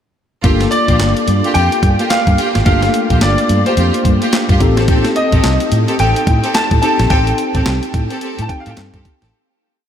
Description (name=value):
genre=R&B, new jack swing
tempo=108 BPM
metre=4/4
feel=swing 61% on 16ths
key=G minor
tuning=A4 = 440 Hz
part: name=tine electric piano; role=accompaniment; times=0.4-9.4 s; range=A3 to A4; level=-19 LUFS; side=left 3 dB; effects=analog chorus
part: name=clear studio string section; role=stabs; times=0.4-9.3 s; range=Bb3 to A4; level=-21 LUFS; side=right 1 dB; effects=none
part: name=vintage muted fingered electric bass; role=bass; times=0.4-9.3 s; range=G1 to A2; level=-15 LUFS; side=equal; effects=none
part: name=boom bap sampler-style drum kit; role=drums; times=0.4-9.3 s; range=handclaps, hi-hat, kick drum, snare drum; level=-17 LUFS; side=equal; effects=none
part: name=bright grand piano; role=melody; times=0.7-8.8 s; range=C5 to A5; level=-18 LUFS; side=equal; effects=ensemble chorus, diffuse ambient delay
room=moderate huge ambient reverb, RT60 7.6 s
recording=dreamy mix soaked in reverb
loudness=-11 LUFS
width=side -9 dB against mid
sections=0.4-9.3 verse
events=fade-out 7.1-9.3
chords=0.4 Gm7; 4.6 Am7b5